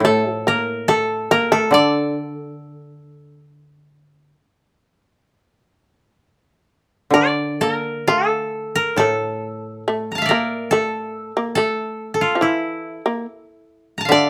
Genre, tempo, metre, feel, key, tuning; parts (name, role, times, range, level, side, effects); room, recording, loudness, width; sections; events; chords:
japanese traditional, Japanese chamber music; 61-72 BPM; 4/4; rubato; D hirajoshi; A4 = 440 Hz
koto; melody; 0.0-14.3 s; E4 to Bb5; -22 LUFS; equal
shamisen; second line; 0.0-14.3 s; E3 to D4; -24 LUFS; equal
koto; accompaniment; 0.0-14.3 s; A2 to D3; -25 LUFS; equal
light reverb; -20 LUFS; mono
0.0-7.1 A section; 7.1-14.3 B section